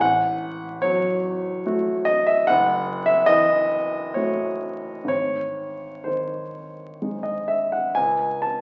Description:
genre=classical, romantic nocturne for solo piano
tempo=62-76 BPM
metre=3/4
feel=rubato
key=unclear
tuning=A4 = 437 Hz
part: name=warm grand piano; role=solo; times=0.0-8.6 s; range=F#1 to A5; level=-23 LUFS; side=equal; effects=none
room=wet recital hall reverb, RT60 1.6 s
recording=very old 78 rpm record, vinyl crackle, nothing above 7.9 kHz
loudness=-23 LUFS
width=mono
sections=0.0-8.6 A section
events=none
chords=0.0 F#m/A; 2.5 F#m7; 5.1 G#; 8.0 C#5

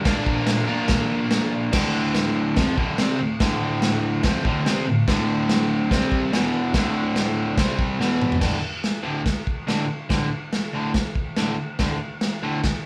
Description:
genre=garage rock duo or trio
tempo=144 BPM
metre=4/4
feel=straight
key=D minor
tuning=A4 = 440 Hz
part: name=crunchy overdriven guitar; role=riff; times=0.0-12.6 s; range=D2 to Bb4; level=-25 LUFS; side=equal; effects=none
part: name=crunchy breakbeat drum kit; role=drums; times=0.1-12.7 s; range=crash cymbal, kick drum, snare drum, toms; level=-26 LUFS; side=equal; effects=none
room=moderate large studio reverb, RT60 0.7 s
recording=band playing live in one room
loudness=-23 LUFS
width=mono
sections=0.0-1.7 A section; 1.7-8.4 B section; 8.4-12.9 C section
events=drum fill 8.0-8.4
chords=0.1 Bb; 1.7 Dm; 5.9 C5; 6.3 E5; 6.7 D5; 7.6 C5; 8.0 E5; 8.4 D5

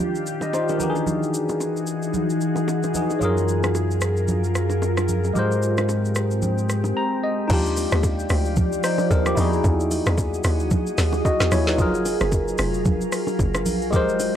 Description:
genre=amapiano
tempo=112 BPM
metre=4/4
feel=swing 58% on 16ths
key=unclear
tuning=A4 = 440 Hz
part: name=barky tine electric piano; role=accompaniment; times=0.0-14.4 s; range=Eb3 to Bb5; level=-25 LUFS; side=left 1 dB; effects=phaser
part: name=glassy FM pad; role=sustained chords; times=0.0-14.4 s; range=Eb3 to D#5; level=-25 LUFS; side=equal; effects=ensemble chorus, built-in reverb, sidechain pumping
part: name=congas and bongos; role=percussion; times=0.0-14.3 s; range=none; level=-29 LUFS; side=right 2 dB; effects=none
part: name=smooth R&B drum kit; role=drums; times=0.2-14.3 s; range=crash cymbal, hi-hat, kick drum, rim click, shaker, snare drum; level=-26 LUFS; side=equal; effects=none
part: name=punchy sub bass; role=bass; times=3.2-6.9 s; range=Gb2 to Ab2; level=-23 LUFS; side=equal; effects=none
part: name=hollow log drum bass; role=bass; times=7.5-14.3 s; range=F1 to E2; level=-24 LUFS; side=equal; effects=none
room=little or no reverb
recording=dry, gritty hardware recording, transformer saturation, cassette tape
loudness=-19 LUFS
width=side -10 dB against mid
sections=0.0-7.5 A section; 7.5-14.4 B section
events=tine electric piano fill 6.7-7.5; drop 7.5-14.4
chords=0.0 Ebmaj9; 0.8 Emaj9; 3.2 Gbmaj9; 5.4 Abmaj9; 7.5 Ebmaj9; 9.4 Emaj9; 11.8 Gbmaj9

